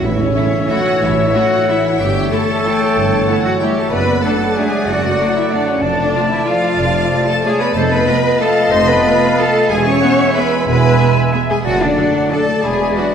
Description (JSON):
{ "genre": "classical, orchestral ballroom waltz", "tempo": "185 BPM", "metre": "3/4", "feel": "uneven beats, rubato", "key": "A major", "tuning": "A4 = 440 Hz", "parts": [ { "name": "rich studio violin section", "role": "second line", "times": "0.0-13.1 s", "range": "C#5 to C#6", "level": "-25 LUFS", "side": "left 2 dB", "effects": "none" }, { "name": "warm clarinet", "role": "second line", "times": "0.0-13.1 s", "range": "C#5 to E5", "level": "-24 LUFS", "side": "left 3 dB", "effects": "none" }, { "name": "warm oboe", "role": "second line", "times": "0.0-13.1 s", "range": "E5 to B5", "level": "-25 LUFS", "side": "equal", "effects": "none" }, { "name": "bright trombone section", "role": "sustained chords", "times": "0.0-13.1 s", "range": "E3 to B3", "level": "-25 LUFS", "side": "right 3 dB", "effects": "none" }, { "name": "dark French horn section", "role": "sustained chords", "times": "0.0-13.1 s", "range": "C#3 to C#4", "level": "-22 LUFS", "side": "left 2 dB", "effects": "none" }, { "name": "dark trumpet", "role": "stabs", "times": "0.0-13.1 s", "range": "C#5 to E5", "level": "-21 LUFS", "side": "left 2 dB", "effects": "none" }, { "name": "mellow tuba", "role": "bass", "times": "0.0-12.9 s", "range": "E1 to A1", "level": "-25 LUFS", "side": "right 2 dB", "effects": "none" }, { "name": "warm studio cello section", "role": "bass", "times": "0.0-13.1 s", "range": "C#4 to C#5", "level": "-19 LUFS", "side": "equal", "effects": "none" }, { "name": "warm studio double bass section", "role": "bass", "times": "0.0-12.9 s", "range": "E1 to A1", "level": "-21 LUFS", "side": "right 4 dB", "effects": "none" }, { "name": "rich studio violin section", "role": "melody", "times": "0.4-13.0 s", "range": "C#5 to E5", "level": "-34 LUFS", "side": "left 4 dB", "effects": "none" }, { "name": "bright concert flute", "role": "second line", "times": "0.4-13.1 s", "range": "C5 to A5", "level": "-23 LUFS", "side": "left 2 dB", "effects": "none" }, { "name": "rich studio viola section", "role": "accompaniment", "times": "0.4-13.0 s", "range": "A3 to B4", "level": "-25 LUFS", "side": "equal", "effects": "none" } ], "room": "wet scoring stage reverb, RT60 1.6 s", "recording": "recorded in a church or concert hall", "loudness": "-12 LUFS", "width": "side -7 dB against mid", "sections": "0.0-13.1 A section", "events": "none", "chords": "0.0 A; 2.0 A7/G; 3.9 D/F#; 5.8 Dm/F; 7.8 F7; 9.7 E; 11.6 D/F#; 12.6 E7" }